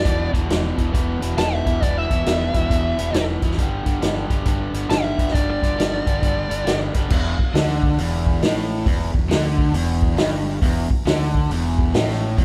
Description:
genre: blues rock power trio and southern rock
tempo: 136 BPM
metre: 4/4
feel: swing 64% on 8ths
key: E minor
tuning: A4 = 442 Hz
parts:
  - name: fuzz lead guitar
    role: melody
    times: 0.0-6.8 s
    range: D5 to A5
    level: -27 LUFS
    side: equal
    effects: distortion
  - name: crunchy overdriven guitar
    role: riff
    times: 0.0-12.4 s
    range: E2 to G3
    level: -27 LUFS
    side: equal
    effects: none
  - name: fuzz fingered electric bass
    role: bass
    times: 0.0-12.4 s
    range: E1 to D2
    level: -27 LUFS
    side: equal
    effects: overdrive
  - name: vintage drum kit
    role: drums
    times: 0.1-12.4 s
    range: crash cymbal, hi-hat, kick drum, snare drum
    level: -23 LUFS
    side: equal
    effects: none
room: moderate large studio reverb, RT60 1.5 s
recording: band playing live in one room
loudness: -20 LUFS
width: mono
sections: 0.0-7.1 A section; 7.1-12.4 B section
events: none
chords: 0.0 E5; 3.6 G5; 7.1 Em

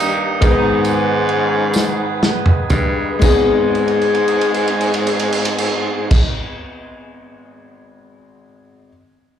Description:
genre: slow gospel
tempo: 38-49 BPM (dotted quarters)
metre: 6/8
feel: straight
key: G# harmonic minor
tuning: A4 = 440 Hz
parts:
  - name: clear horn section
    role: melody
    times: 0.0-6.3 s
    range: D#3 to G#4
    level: -22 LUFS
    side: right 2 dB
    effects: plate reverb, slapback echo, tape echo
  - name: bright upright piano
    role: accompaniment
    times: 0.0-8.9 s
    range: G#1 to B4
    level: -20 LUFS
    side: left 5 dB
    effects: plate reverb, slapback echo
  - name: mellow tonewheel organ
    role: sustained chords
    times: 0.0-6.3 s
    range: B3 to B5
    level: -27 LUFS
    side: right 4 dB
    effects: slow rotary speaker, plate reverb
  - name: mellow baritone saxophone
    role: bass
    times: 0.0-6.3 s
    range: G2 to G#2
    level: -20 LUFS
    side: equal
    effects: none
  - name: warm soul drum kit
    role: drums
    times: 0.0-7.8 s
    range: crash cymbal, kick drum, ride cymbal, snare drum, toms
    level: -18 LUFS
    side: right 1 dB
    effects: none
  - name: tambourine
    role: percussion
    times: 0.0-6.3 s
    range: none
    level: -31 LUFS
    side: right 4 dB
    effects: none
room: light reverb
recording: live gig heard through the venue's PA, club reverb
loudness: -14 LUFS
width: side -9 dB against mid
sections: 0.0-3.2 A section; 3.2-6.4 B section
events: slowing down 0.0-3.2; drum fill 1.7-3.2, 3.7-6.1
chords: 0.4 G#m

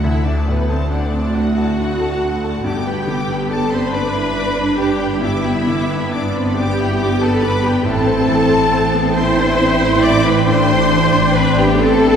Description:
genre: cinematic, emotional film score for orchestra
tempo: 46 BPM (dotted quarters)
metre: 6/8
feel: rubato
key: unclear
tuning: A4 = 440 Hz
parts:
  - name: rich symphonic violin section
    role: melody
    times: 0.0-12.2 s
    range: F#5 to D6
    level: -29 LUFS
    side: left 2 dB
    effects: none
  - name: clear symphonic violin section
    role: second line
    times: 0.0-12.2 s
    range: B4 to D6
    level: -23 LUFS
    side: left 2 dB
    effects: none
  - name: bright grand piano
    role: accompaniment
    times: 0.0-12.2 s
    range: D2 to C5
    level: -21 LUFS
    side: left 2 dB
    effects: none
  - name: clear symphonic viola section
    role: accompaniment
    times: 0.0-12.2 s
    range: B3 to D5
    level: -20 LUFS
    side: equal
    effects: none
  - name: rich symphonic cello section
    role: bass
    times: 0.0-12.2 s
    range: A3 to E4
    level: -20 LUFS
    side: right 1 dB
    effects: none
  - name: rich symphonic double bass section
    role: bass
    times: 0.0-12.2 s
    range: G1 to D2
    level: -20 LUFS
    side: equal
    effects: none
room: wet church reverb, RT60 2.8 s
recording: heard from further back in the room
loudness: -14 LUFS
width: side -7 dB against mid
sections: 0.0-12.2 A section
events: none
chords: 0.0 D; 2.7 G; 7.9 Am7

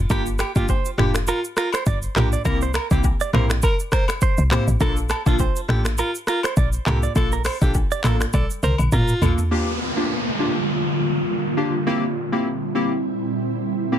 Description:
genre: afrobeats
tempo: 102 BPM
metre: 4/4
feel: swing 55% on 16ths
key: G dorian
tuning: A4 = 440 Hz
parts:
  - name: woody log drum bass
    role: bass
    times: 0.0-9.3 s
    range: F1 to Bb2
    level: -21 LUFS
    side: equal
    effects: none
  - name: breathy alto saxophone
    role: melody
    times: 0.1-9.4 s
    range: F4 to C5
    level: -28 LUFS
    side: equal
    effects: tape echo
  - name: warm analog keys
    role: accompaniment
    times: 0.1-14.0 s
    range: Bb3 to A4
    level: -25 LUFS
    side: left 1 dB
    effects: chorus
  - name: direct-recorded clean electric guitar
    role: riff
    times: 0.1-9.1 s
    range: G4 to D5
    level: -27 LUFS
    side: right 9 dB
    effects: tape echo
  - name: afro-pop drum kit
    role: drums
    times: 0.1-9.5 s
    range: finger snaps, handclaps, hi-hat, kick drum, rim click, shaker, toms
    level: -22 LUFS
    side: equal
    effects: soft clipping on snare
  - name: agogo bells and woodblock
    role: percussion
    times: 0.1-9.4 s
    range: none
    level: -34 LUFS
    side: left 8 dB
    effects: none
  - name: ethereal airy pad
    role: sustained chords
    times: 10.2-14.0 s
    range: Bb2 to F4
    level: -23 LUFS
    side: right 1 dB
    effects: ensemble chorus, built-in reverb, sidechain pumping
  - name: downlifter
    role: sound effects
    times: 9.5-14.0 s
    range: none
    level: -27 LUFS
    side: equal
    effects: none
room: light reverb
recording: dense, heavily limited modern master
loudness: -18 LUFS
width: side -10 dB against mid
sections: 0.0-9.5 A section; 9.5-14.0 B section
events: drum fill 8.3-9.5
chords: 0.1 Gm7; 2.5 C7; 4.8 Bbmaj7; 9.5 Gm7; 11.9 C7

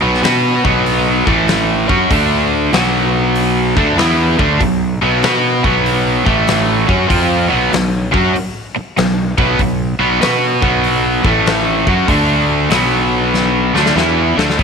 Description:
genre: blues rock power trio and southern rock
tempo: 96 BPM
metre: 4/4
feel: swing 66% on 8ths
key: B minor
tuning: A4 = 440 Hz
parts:
  - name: cranked stack guitar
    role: riff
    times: 0.0-14.6 s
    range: A2 to B4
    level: -13 LUFS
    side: right 1 dB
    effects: overdrive
  - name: fuzz fingered electric bass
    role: bass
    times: 0.0-14.6 s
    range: A1 to B2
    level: -19 LUFS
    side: equal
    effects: overdrive
  - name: big rock drum kit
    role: drums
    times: 0.1-14.6 s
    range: hi-hat, kick drum, snare drum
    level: -19 LUFS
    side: left 3 dB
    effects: none
room: light reverb, small room ambience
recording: 1960s-style stereo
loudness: -11 LUFS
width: side -6 dB against mid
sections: 0.0-14.6 A section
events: drum fill 13.3-14.6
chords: 0.0 B5; 1.2 A5; 1.8 F#5; 2.1 D5; 2.7 Bm; 6.2 A5; 6.8 B5; 11.2 A5; 11.8 F#5; 12.1 D5; 12.7 Bm

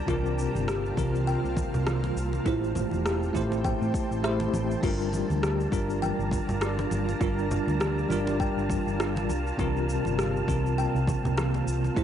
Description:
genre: sunset chillout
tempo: 101 BPM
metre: 4/4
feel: swing 57% on 16ths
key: unclear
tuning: A4 = 440 Hz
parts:
  - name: shimmering ambient pad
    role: sustained chords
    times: 0.0-12.0 s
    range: C3 to Bb4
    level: -34 LUFS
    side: right 1 dB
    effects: chorus, built-in reverb
  - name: wind-like tuned noise texture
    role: texture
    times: 0.0-12.0 s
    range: A5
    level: -39 LUFS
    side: right 4 dB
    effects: built-in reverb
  - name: bell-like tine electric piano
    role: accompaniment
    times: 0.1-12.0 s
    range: C3 to C5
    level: -30 LUFS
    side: moving between left 5 dB and right 6 dB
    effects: fast stereo tremolo, auto-pan, analog delay
  - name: kalimba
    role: arpeggios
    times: 0.1-12.0 s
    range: E4 to G5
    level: -35 LUFS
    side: left 1 dB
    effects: analog delay
  - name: hollow-body short-scale fingered electric bass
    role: bass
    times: 0.1-12.0 s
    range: E1 to A2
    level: -30 LUFS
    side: equal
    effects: none
  - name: deep house drum kit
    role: drums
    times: 0.1-12.0 s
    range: congas, crash cymbal, rim click, shaker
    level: -35 LUFS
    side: right 1 dB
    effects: overdrive
  - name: electronic kick drum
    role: drums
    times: 0.1-12.0 s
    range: none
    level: -31 LUFS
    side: equal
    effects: overdrive
  - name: congas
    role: percussion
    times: 0.6-11.9 s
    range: none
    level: -35 LUFS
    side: left 1 dB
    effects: none
room: light reverb, digital ambience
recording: dry, gritty hardware recording, nothing above 10.4 kHz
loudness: -25 LUFS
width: side -9 dB against mid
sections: 0.0-12.0 A section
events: none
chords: 0.0 C7sus4; 2.5 Am7; 4.8 Gm7; 9.3 C7sus4

